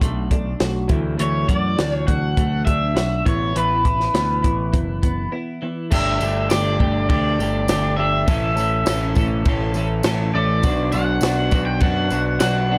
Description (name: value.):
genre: indie rock.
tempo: 102 BPM.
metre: 4/4.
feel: straight.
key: unclear.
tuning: A4 = 443 Hz.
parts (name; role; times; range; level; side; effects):
electric guitar through a small old amp; riff; 0.0-12.8 s; E3 to A4; -29 LUFS; equal; vibrato effect.
twelve-string electric guitar; riff; 0.0-12.8 s; E3 to A4; -30 LUFS; equal; lush chorus.
growling picked electric bass; bass; 0.0-12.8 s; F#1 to F#2; -25 LUFS; equal; overdrive.
compact cocktail drum kit; drums; 0.0-12.5 s; crash cymbal, hi-hat, kick drum, snare drum; -25 LUFS; equal; none.
raw garage guitar; melody; 1.2-12.8 s; B4 to G5; -25 LUFS; equal; overdrive, slapback echo.
tambourine; percussion; 5.9-12.5 s; none; -40 LUFS; equal; none.
room: light reverb.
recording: dark, warm production.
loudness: -20 LUFS.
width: mono.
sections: 0.0-5.9 A section; 5.9-12.8 B section.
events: break 5.3-5.9.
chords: 0.0 Bm7; 3.3 Asus2; 5.9 Gsus2; 8.3 A; 10.6 Bm.